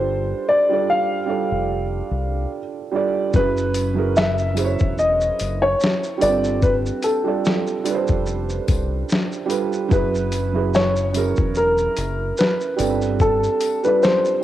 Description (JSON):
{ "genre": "lo-fi hip hop", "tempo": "73 BPM", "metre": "4/4", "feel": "swing 55% on 16ths", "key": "unclear", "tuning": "A4 = 440 Hz", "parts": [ { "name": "dark upright piano", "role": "melody", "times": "0.0-14.4 s", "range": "A4 to F5", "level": "-20 LUFS", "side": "left 1 dB", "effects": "none" }, { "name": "felt-muted upright piano", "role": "accompaniment", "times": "0.0-14.4 s", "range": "F#3 to D5", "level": "-23 LUFS", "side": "right 6 dB", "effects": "cassette tape" }, { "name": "deep dub fingered electric bass", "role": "bass", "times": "0.0-13.5 s", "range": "E1 to C2", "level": "-25 LUFS", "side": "left 1 dB", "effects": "none" }, { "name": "dusty soul sampler-style drum kit", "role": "drums", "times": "3.3-14.4 s", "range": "hi-hat, kick drum, shaker, snare drum", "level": "-22 LUFS", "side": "left 1 dB", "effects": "overdrive, vintage 12-bit sampler grit, cassette tape" }, { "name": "tambourine", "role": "percussion", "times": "3.7-13.8 s", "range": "none", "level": "-38 LUFS", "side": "left 12 dB", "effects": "none" } ], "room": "moderate spring reverb, RT60 2.1 s", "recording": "home recording on cassette", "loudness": "-18 LUFS", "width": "side -13 dB against mid", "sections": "0.0-14.4 A section", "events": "none", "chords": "0.0 G9sus4; 3.3 F#9sus4; 6.2 G9sus4; 9.9 F#9sus4; 12.8 G9sus4" }